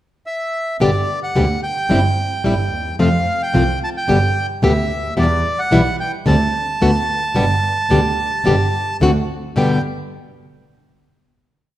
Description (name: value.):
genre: tango.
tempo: 110 BPM.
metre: 4/4.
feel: rubato.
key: G major.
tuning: A4 = 440 Hz.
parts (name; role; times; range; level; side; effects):
bandoneon; melody; 0.3-9.8 s; D5 to A5; -20 LUFS; right 1 dB; none.
nylon-string guitar; accompaniment; 0.8-9.8 s; G2 to G4; -18 LUFS; left 2 dB; none.
clear double bass; bass; 0.8-9.8 s; G1 to F2; -20 LUFS; right 2 dB; none.
room: moderate recital hall reverb, RT60 1.7 s.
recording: none.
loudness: -15 LUFS.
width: side -13 dB against mid.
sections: 0.0-0.8 pickup bar; 0.8-9.6 A section; 9.6-11.7 final chord.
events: none.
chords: 0.0 N.C.; 0.8 G; 1.9 C/G; 3.0 F; 4.1 G; 5.2 Em; 6.3 D7sus4; 6.8 D6; 7.3 G; 9.0 D7; 9.6 G.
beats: 0.26 | 0.80 1.35 1.90 2.44 | 2.99 3.54 4.08 4.62 | 5.17 5.71 6.26 6.80 | 7.35 7.90 8.45 9.00 | 9.55.